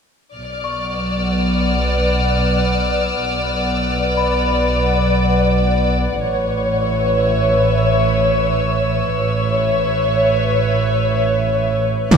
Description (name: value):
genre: cinematic, suspense film score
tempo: 102 BPM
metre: 5/4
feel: straight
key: B minor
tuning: A4 = 441 Hz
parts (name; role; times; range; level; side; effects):
- warm symphonic violin section; melody; 0.3-12.2 s; C#5 to D5; -20 LUFS; left 2 dB; none
- warm chamber double bass section; bass; 0.3-12.2 s; A1 to B1; -19 LUFS; right 2 dB; none
- glassy FM pad; sustained chords; 1.0-12.2 s; B4 to F#5; -21 LUFS; left 1 dB; ensemble chorus, built-in reverb
- warm studio violin section; texture; 0.4-12.2 s; C#6 to F#6; -26 LUFS; left 4 dB; none
- worn celesta; texture; 0.6-6.3, 12.1-12.2 s; B5 to D6; -27 LUFS; left 8 dB; none
- warm symphonic cello section; bass; 12.1-12.2 s; B2; -24 LUFS; right 3 dB; none
- impact; sound effects; 12.1-12.2 s; none; -8 LUFS; right 2 dB; none
room: moderate scoring stage reverb, RT60 1.9 s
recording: none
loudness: -15 LUFS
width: side -6 dB against mid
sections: 0.4-12.1 A section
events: none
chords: 0.4 Bm; 6.2 Aadd9